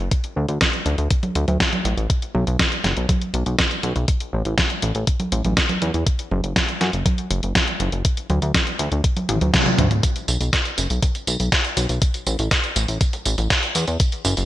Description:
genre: italo disco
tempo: 121 BPM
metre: 4/4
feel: straight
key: B minor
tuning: A4 = 439 Hz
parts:
  - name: chorused synth bass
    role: bass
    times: 0.0-14.5 s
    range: D1 to F#2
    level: -22 LUFS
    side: equal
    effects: none
  - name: clean 12-bit digital drum machine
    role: drums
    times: 0.1-14.5 s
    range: congas, hi-hat, snare drum, tambourine, toms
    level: -21 LUFS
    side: equal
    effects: high-pass filter on hats, high-pass filter on snare, high-pass filter on perc, high-pass filter on toms, gated reverb
  - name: electronic kick drum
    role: drums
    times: 0.1-14.1 s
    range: none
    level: -21 LUFS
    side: equal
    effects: none
room: light reverb, digital ambience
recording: bright 1980s-style digital production, faint mains hum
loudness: -18 LUFS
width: side -14 dB against mid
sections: 0.0-10.0 A section; 10.0-14.5 B section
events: drum fill 9.3-10.0; band accent 9.5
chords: none

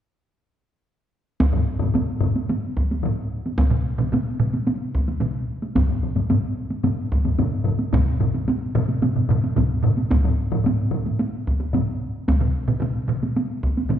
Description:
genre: japanese traditional, taiko drum ensemble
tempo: 110 BPM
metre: 4/4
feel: straight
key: none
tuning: none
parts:
  - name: solo taiko drums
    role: percussion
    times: 1.4-13.8 s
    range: none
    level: -24 LUFS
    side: equal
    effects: none
  - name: taiko ensemble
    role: percussion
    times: 1.4-14.0 s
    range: none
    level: -26 LUFS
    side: right 2 dB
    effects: none
  - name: taiko ensemble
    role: percussion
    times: 1.5-11.9 s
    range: none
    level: -24 LUFS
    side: left 2 dB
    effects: none
  - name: taiko ensemble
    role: percussion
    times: 3.7-14.0 s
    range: none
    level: -24 LUFS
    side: right 1 dB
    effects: none
room: wet recital hall reverb, RT60 1.6 s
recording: recorded in a church or concert hall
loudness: -20 LUFS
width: side -10 dB against mid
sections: 1.4-14.0 A section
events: none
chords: none

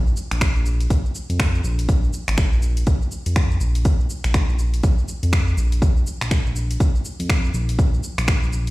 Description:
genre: afro house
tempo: 122 BPM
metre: 4/4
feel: swing 60% on 16ths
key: unclear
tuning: A4 = 440 Hz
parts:
  - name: smooth synth bass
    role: bass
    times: 0.0-8.7 s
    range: Ab1 to F2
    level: -21 LUFS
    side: equal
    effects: sidechain pumping
  - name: house drum kit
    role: drums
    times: 0.1-8.7 s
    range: finger snaps, hi-hat, shaker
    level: -28 LUFS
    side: equal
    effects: overdrive
  - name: electronic kick drum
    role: drums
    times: 0.4-8.4 s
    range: none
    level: -19 LUFS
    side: equal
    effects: overdrive
room: digital ambience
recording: played on a big sound system in a bare room, stone room reverb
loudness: -18 LUFS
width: side -19 dB against mid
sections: 0.0-8.7 A section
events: none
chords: none

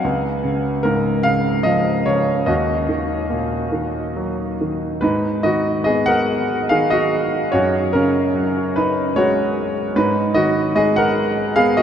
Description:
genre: classical, lyrical solo piano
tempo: 73 BPM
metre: 3/4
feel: rubato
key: Eb minor, G# minor from 5.0 s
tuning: A4 = 443 Hz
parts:
  - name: clear concert grand piano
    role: solo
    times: 0.0-11.8 s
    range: Db2 to F#5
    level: -16 LUFS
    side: equal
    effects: none
room: wet huge ambient reverb, RT60 7.7 s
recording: in a vast, echoing space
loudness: -16 LUFS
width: side -8 dB against mid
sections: 0.0-5.0 A section; 5.0-11.8 B section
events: none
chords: 0.0 Db; 2.5 Ebm; 5.0 G#m; 7.5 F#sus2; 10.0 G#m

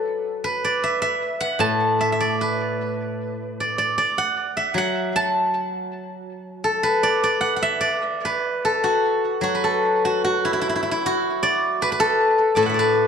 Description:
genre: chinese traditional, Chinese solo plucked strings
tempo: 77 BPM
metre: 2/4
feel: rubato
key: D gong mode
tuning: A4 = 440 Hz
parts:
  - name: steel-string zither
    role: solo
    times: 0.0-13.1 s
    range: A2 to D6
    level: -19 LUFS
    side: equal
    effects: tape echo
room: moderate recital hall reverb, RT60 1.5 s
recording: dark, warm production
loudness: -19 LUFS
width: side -7 dB against mid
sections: 0.0-9.4 A section; 9.4-13.1 B section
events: none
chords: none

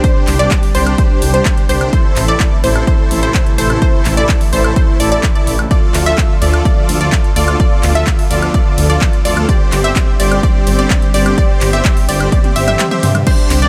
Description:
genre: EDM, festival progressive house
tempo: 127 BPM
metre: 4/4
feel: straight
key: unclear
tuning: A4 = 440 Hz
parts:
  - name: lush unison pad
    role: sustained chords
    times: 0.0-13.7 s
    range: C3 to G4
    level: -24 LUFS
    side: equal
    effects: chorus, phaser, sidechain pumping
  - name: unison pluck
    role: arpeggios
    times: 0.0-13.7 s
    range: C5 to E5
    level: -22 LUFS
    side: equal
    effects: sidechain pumping, dub echo
  - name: dense compressed supersaw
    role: riff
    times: 0.0-13.7 s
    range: D4 to E5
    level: -21 LUFS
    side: equal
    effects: sidechain pumping, dub echo
  - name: big-room dance drum kit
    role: drums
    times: 0.0-13.7 s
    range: crash cymbal, handclaps, hi-hat, ride cymbal, toms, woodblock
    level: -23 LUFS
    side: equal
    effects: none
  - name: electronic kick drum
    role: drums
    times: 0.0-13.4 s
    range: none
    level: -16 LUFS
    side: equal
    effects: overdrive
  - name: detuned saw bass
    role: bass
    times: 0.3-13.7 s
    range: G1 to G2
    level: -18 LUFS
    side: equal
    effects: chorus, sidechain pumping
room: little or no reverb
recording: none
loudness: -13 LUFS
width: mono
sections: 0.0-13.3 A section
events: drop 0.0-13.3; drum fill 12.3-13.3; kick drops out 12.8-13.3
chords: 0.0 Csus2; 1.9 Am; 5.7 Dm; 9.5 Gsus4

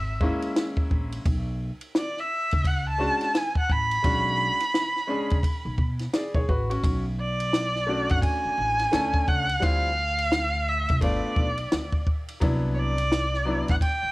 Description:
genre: hip hop, jazz-hop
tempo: 86 BPM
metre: 4/4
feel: swing 62% on 16ths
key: B dorian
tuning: A4 = 440 Hz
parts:
  - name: rich erhu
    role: melody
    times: 0.0-14.1 s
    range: C#5 to B5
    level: -26 LUFS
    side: right 1 dB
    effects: cassette tape
  - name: upright bass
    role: bass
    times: 0.0-14.1 s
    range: G1 to B2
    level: -29 LUFS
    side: equal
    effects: none
  - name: bright grand piano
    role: accompaniment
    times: 0.2-13.7 s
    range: F#3 to D5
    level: -30 LUFS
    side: left 1 dB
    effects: cassette tape
  - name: compact cocktail drum kit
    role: drums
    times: 0.2-14.0 s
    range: hi-hat, kick drum, ride cymbal, snare drum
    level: -25 LUFS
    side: equal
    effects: cassette tape
room: light reverb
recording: home recording on cassette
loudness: -22 LUFS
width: side -20 dB against mid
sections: 0.0-6.8 A section; 6.8-14.1 B section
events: none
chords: 0.0 F#7 (rootless); 1.3 Bm69; 6.8 Bm9; 9.6 Dm11; 11.0 G7 (rootless); 12.4 Cmaj9#11

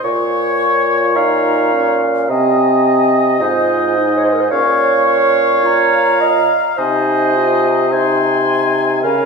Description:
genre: classical, slow romantic movement for wind quintet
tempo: 54 BPM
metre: 4/4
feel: rubato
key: Ab major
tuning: A4 = 440 Hz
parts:
  - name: concert flute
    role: melody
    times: 0.0-9.3 s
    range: Ab5 to Db6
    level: -19 LUFS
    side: left 6 dB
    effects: none
  - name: warm oboe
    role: second line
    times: 0.0-9.3 s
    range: Db5 to Ab5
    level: -21 LUFS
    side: left 4 dB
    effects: none
  - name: mellow clarinet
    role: accompaniment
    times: 0.0-9.3 s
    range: Bb4 to F5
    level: -16 LUFS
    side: right 5 dB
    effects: none
  - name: warm French horn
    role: accompaniment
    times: 0.0-9.3 s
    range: C4 to F4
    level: -21 LUFS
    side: left 1 dB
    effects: none
  - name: mellow bassoon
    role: bass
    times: 0.0-9.3 s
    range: Ab2 to Db3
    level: -17 LUFS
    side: equal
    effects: none
room: wet recital hall reverb, RT60 1.6 s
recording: heard from further back in the room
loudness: -12 LUFS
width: side -4 dB against mid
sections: 0.0-9.3 A section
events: none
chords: 0.1 Eb5/Bb; 2.3 Ab/C; 4.5 Bbmadd11; 6.8 Ab/C

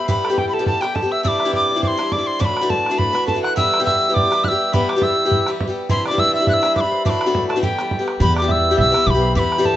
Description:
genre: celtic folk, Celtic reel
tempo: 207 BPM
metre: 4/4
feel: swing 54% on 8ths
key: E minor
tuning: A4 = 440 Hz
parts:
  - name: tin whistle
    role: melody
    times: 0.0-9.8 s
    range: G5 to F#6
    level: -19 LUFS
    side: left 1 dB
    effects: none
  - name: concert harp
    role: second line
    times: 0.0-9.8 s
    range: G4 to F#5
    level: -25 LUFS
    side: right 3 dB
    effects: none
  - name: picked swing-style acoustic guitar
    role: accompaniment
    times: 0.0-9.8 s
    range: D2 to G4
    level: -21 LUFS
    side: left 2 dB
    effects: none
  - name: bodhran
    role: percussion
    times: 0.1-9.8 s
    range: none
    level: -23 LUFS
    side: right 2 dB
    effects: none
  - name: upright bass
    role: bass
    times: 8.2-9.8 s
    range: B1 to E2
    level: -20 LUFS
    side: equal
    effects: none
room: light reverb, studio reverb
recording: rough home demo mix, nothing above 7.9 kHz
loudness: -15 LUFS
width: side -13 dB against mid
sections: 0.0-8.2 A section; 8.2-9.8 A section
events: none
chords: 0.0 Em; 1.2 Cadd9; 2.4 Dadd9; 3.6 Em; 5.9 Cadd9; 7.0 Dadd9; 7.6 Em

